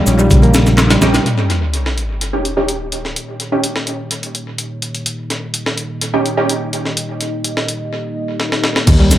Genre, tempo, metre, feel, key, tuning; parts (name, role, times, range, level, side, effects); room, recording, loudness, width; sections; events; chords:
breakbeat, breaks; 126 BPM; 4/4; straight; A4 = 440 Hz
dark analog pad; sustained chords; 0.0-9.2 s; Bb3 to F5; -24 LUFS; equal; chorus, phaser, sidechain pumping
barky reed electric piano; riff; 0.0-1.3, 8.9-9.2 s; Db3 to Db4; -16 LUFS; equal; overdrive, vintage 12-bit sampler grit, tape echo
modern bright picked electric bass; bass; 0.1-1.2, 8.9-9.2 s; Bb1 to Eb2; -14 LUFS; equal; tube saturation
breakbeat sampler-style drum kit; drums; 0.1-9.2 s; crash cymbal, hi-hat, kick drum, snare drum; -17 LUFS; equal; high-pass filter on hats, high-pass filter on kick, high-pass filter on snare, high-pass filter on cymbals, tape echo
punchy analog drum machine; drums; 0.1-1.2, 8.9-9.2 s; handclaps, ride cymbal, shaker; -24 LUFS; equal; overdrive, tape echo
congas; percussion; 0.4-1.1 s; -22 LUFS; right 3 dB
orchestra-hit-like synth stab; stabs; 1.0-6.5 s; Db4 to G4; -20 LUFS; right 2 dB; built-in reverb, tape echo
sub drop and impact; sound effects; 1.3-3.2, 8.9-9.2 s; -18 LUFS; equal
light reverb; echo-heavy mix; -14 LUFS; side -13 dB against mid
0.0-1.3 A section; 1.3-8.9 B section
band accent 0.8; impact 1.3-3.2, 8.9-9.2; filter sweep on analog synth pad 1.3-8.9; drum fill 8.4-8.9
0.0 Eb7